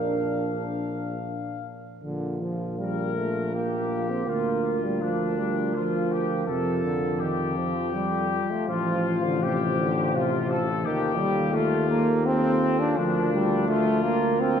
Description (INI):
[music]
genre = classical, hymn-like piece for brass band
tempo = 82 BPM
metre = 3/4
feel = uneven beats, rubato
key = Bb major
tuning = A4 = 438 Hz
[part]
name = warm trumpet section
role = melody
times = 0.0-14.6 s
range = C4 to F5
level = -31 LUFS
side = left 7 dB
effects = none
[part]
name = mellow French horn section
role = second line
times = 0.0-14.6 s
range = A4 to C5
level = -32 LUFS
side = right 6 dB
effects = none
[part]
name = dark trombone section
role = accompaniment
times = 0.0-14.6 s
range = D4 to F4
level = -32 LUFS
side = left 4 dB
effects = none
[part]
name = warm trombone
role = accompaniment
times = 0.0-14.6 s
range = C3 to D4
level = -28 LUFS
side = right 2 dB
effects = none
[part]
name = warm tuba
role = bass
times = 0.0-14.6 s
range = A1 to F2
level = -29 LUFS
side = left 1 dB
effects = none
[sound]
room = wet church reverb, RT60 3.9 s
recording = none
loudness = -23 LUFS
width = side -8 dB against mid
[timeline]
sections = 0.0-2.0 A section; 2.0-14.6 B section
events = none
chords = 0.0 Bb; 2.0 Bb5; 4.3 Bb/D; 6.5 F; 8.7 F/A; 10.9 F7/Eb; 13.0 Bb/D